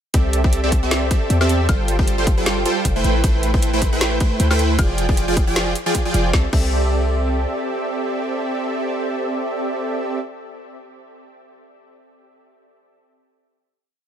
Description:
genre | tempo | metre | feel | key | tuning
future bass | 155 BPM | 4/4 | swing 56% on 16ths, half-time | C major | A4 = 441 Hz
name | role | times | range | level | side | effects
supersaw stab | riff | 0.1-10.2 s | F3 to G5 | -21 LUFS | right 1 dB | sidechain pumping, ping-pong delay
warm 808-style bass | bass | 0.1-7.5 s | F1 to E2 | -20 LUFS | equal | sidechain pumping
electronic kick drum | drums | 0.1-6.7 s | none | -18 LUFS | equal | none
trap drum kit | drums | 0.1-6.7 s | crash cymbal, hi-hat, snare drum, woodblock | -25 LUFS | equal | none
room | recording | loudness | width
digital ambience | none | -17 LUFS | side -9 dB against mid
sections
0.1-6.3 drop; 6.3-9.4 final chord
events
drop 0.1-6.3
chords
0.1 C6; 1.7 G9sus4; 3.0 Am7; 4.8 Fm6; 6.3 C6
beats
| 0.14 0.53 0.92 1.30 | 1.69 2.08 2.46 2.85 | 3.24 3.62 4.01 4.40 | 4.79 5.17 5.56 5.95 | 6.33 6.72 7.11 7.50 | 7.88 8.27 8.66 9.04

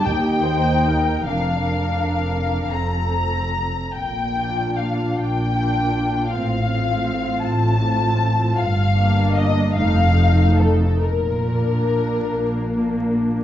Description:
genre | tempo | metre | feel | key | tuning
classical, slow romantic movement for string orchestra | 41-55 BPM (dotted quarters) | 6/8 | rubato | Bb major | A4 = 440 Hz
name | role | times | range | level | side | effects
muted chamber violin section | second line | 0.0-13.2 s | A4 to Bb5 | -27 LUFS | left 4 dB | none
muted studio viola section | accompaniment | 0.0-13.4 s | A3 to C5 | -25 LUFS | right 1 dB | none
muted studio cello section | bass | 0.0-13.4 s | Eb2 to Bb3 | -22 LUFS | equal | none
muted studio double bass section | bass | 0.0-13.4 s | F1 to Eb2 | -24 LUFS | right 1 dB | none
muted studio violin section | melody | 0.1-13.2 s | A4 to Bb5 | -25 LUFS | left 3 dB | none
room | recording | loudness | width
wet recital hall reverb, RT60 1.3 s | dark, warm production, vinyl crackle, nothing above 7.8 kHz | -17 LUFS | side -12 dB against mid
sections
0.0-13.4 A section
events
none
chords
0.1 Cm7/Eb; 1.3 Fsus4; 2.7 F; 4.0 Bb; 6.3 F/A; 8.6 Gm7; 9.8 F7; 11.0 Bb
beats
0.06 | 1.30 2.69 | 3.97 5.18 | 6.34 7.45 | 8.59 9.76 | 11.02 12.32

